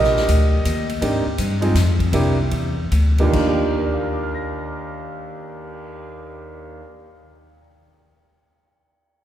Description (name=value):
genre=jazz piano trio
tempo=140-165 BPM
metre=3/4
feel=swing 65% on 8ths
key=Eb major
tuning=A4 = 441 Hz
part: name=clear concert grand piano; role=melody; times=0.0-7.7 s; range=Eb2 to Bb6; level=-22 LUFS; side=right 2 dB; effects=none
part: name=upright bass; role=bass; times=0.0-6.9 s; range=Bb1 to Ab2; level=-19 LUFS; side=left 1 dB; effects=none
part: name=swinging big-band drum kit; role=drums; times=0.0-5.8 s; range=crash cymbal, cymbal swell, hi-hat, kick drum, ride cymbal, snare drum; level=-29 LUFS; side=left 2 dB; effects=none
room=wet church reverb, RT60 2.6 s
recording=recorded in a church or concert hall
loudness=-17 LUFS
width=side -11 dB against mid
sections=0.0-1.0 A section; 1.0-3.3 B section; 3.3-5.9 C section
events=slowing down 1.0-3.3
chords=0.0 Ebmaj7; 1.0 Abmaj9#11; 1.8 N.C.; 2.1 C7; 2.9 Bb6; 3.3 Ebmaj7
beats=0.29 0.65 | 1.02 1.38 1.75 | 2.13 2.52 2.92 | 3.34 3.77 4.20 | 4.62 5.05 5.48